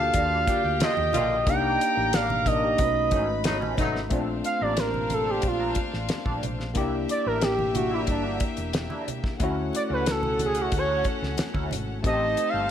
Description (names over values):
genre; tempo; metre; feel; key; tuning
lush 1970s-style soul; 91 BPM; 4/4; straight; unclear; A4 = 439 Hz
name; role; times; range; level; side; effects
expressive portamento lead; melody; 0.0-12.7 s; D4 to G5; -26 LUFS; right 2 dB; chorus, slapback echo
warm studio violin section; second line; 0.0-12.7 s; Bb3 to B5; -35 LUFS; left 2 dB; none
tine electric piano; accompaniment; 0.0-12.7 s; D3 to Bb4; -30 LUFS; left 5 dB; wide subtle chorus
electric guitar through a small old amp; riff; 0.0-12.7 s; Eb3 to Bb4; -37 LUFS; right 3 dB; wah
hollow-body short-scale fingered electric bass; bass; 0.0-12.7 s; E1 to Eb2; -32 LUFS; equal; none
damped 70s drum kit; drums; 0.1-12.5 s; hi-hat, kick drum, snare drum; -29 LUFS; equal; none
congas; percussion; 0.2-12.5 s; none; -36 LUFS; right 5 dB; none
mellow horn section; stabs; 0.5-4.0 s; A2 to F4; -31 LUFS; left 3 dB; slapback echo
room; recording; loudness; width
light reverb, studio ambience; none; -23 LUFS; side -9 dB against mid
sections
0.0-4.1 A section; 4.1-12.7 B section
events
analog synth lead solo 4.1-12.7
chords
0.0 Ebmaj9; 1.5 Cm9; 2.8 B9; 4.1 Bbmaj9; 6.8 C9 (rootless); 9.4 Dmaj9; 12.0 Am7b5